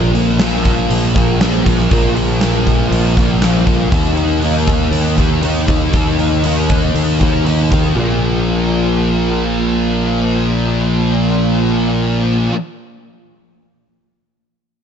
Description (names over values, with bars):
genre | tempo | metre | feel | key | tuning
rock, shoegaze and dream pop | 119 BPM | 4/4 | straight | unclear | A4 = 439 Hz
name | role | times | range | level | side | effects
thick fuzz guitar | riff | 0.0-12.5 s | Bb2 to Eb4 | -15 LUFS | equal | distortion, ensemble chorus
growling fingered electric bass | bass | 0.0-12.5 s | Bb1 to Eb2 | -18 LUFS | equal | overdrive
huge arena drum kit | drums | 0.1-7.8 s | hi-hat, kick drum, snare drum | -17 LUFS | equal | none
room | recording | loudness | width
little or no reverb | nothing above 7.9 kHz | -12 LUFS | side -8 dB against mid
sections
0.0-8.0 A section; 8.0-12.0 B section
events
none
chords
0.0 Bb5; 3.9 Eb5; 8.0 Bb5